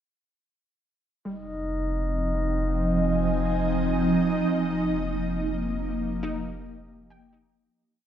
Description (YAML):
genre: ambient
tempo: free time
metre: none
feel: none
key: F minor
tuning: A4 = 440 Hz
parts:
  - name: glass harmonica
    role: texture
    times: 1.2-7.8 s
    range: Eb4 to Eb5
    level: -32 LUFS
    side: left 1 dB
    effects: none
  - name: ethereal airy pad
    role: sustained chords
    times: 2.1-7.8 s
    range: F3 to Ab5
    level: -25 LUFS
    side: right 1 dB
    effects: ensemble chorus, built-in reverb, phaser
  - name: soft round pluck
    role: arpeggios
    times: 1.3-8.1 s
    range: G3 to G5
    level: -40 LUFS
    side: left 1 dB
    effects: ensemble chorus, ping-pong delay
  - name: warm sub bass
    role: bass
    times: 1.3-7.7 s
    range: F1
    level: -31 LUFS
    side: equal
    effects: none
room: wet concert hall reverb, RT60 2.0 s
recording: dark, warm production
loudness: -24 LUFS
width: side -10 dB against mid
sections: 1.3-7.8 A section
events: fade-in on synth pluck 1.3-7.8; fade-out on glass harmonica 1.3-7.8; fade-out 4.5-7.8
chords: 1.3 Fm7; 4.5 Ebadd9/F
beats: free time